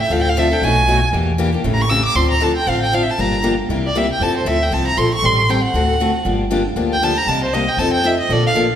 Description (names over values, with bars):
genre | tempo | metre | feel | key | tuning
acoustic string swing (jazz manouche) | 234 BPM | 4/4 | swing 57% on 8ths | D minor | A4 = 442 Hz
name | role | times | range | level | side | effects
warm violin | melody | 0.0-8.5 s | C5 to E6 | -18 LUFS | right 1 dB | none
picked steel-string acoustic guitar | accompaniment | 0.1-8.7 s | B2 to A4 | -19 LUFS | left 3 dB | none
upright bass | bass | 0.1-8.7 s | G1 to F2 | -20 LUFS | right 1 dB | none
room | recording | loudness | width
wet recital hall reverb, RT60 1.5 s | recorded in a church or concert hall | -14 LUFS | side -9 dB against mid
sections
0.0-2.2 A section; 2.2-8.8 A section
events
violin solo 0.0-8.8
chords
0.1 Dm7; 0.6 B7; 1.1 Em7b5; 1.6 A7; 2.2 Dm7; 3.2 Gm7; 3.7 C7; 4.2 Fmaj7; 5.2 Am7b5; 5.7 D7; 6.3 Gm7; 7.3 Cm7; 7.8 F7